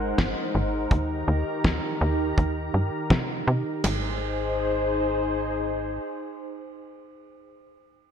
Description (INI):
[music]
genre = synthwave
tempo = 82 BPM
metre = 4/4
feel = straight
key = Ab major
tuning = A4 = 439 Hz
[part]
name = warm analog pad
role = sustained chords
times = 0.0-7.5 s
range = Eb3 to Bb5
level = -28 LUFS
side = left 1 dB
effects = wide subtle chorus, sidechain pumping
[part]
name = tight sequencer bass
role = bass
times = 0.0-6.0 s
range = Ab1 to C3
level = -27 LUFS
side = equal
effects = sidechain pumping
[part]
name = damped 70s drum kit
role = drums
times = 0.2-4.0 s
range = kick drum, ride cymbal, snare drum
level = -28 LUFS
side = equal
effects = gated reverb
[part]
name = snare drum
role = drums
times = 0.2-3.3 s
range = none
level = -26 LUFS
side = left 1 dB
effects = low-pass filter on snare, low-pass filter on room, gated reverb
[sound]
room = moderate lush hall reverb, RT60 1.9 s, studio ambience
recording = bright 1980s-style digital production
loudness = -23 LUFS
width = side -8 dB against mid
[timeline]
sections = 0.0-3.8 A section; 3.8-6.8 B section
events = filter sweep on drum 0.0-3.8; filter sweep on analog synth bass 0.0-3.8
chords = 0.0 Ab7; 0.9 Eb; 3.8 Ab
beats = 0.18 | 0.91 1.65 2.38 3.11 | 3.84 4.57 5.30 6.04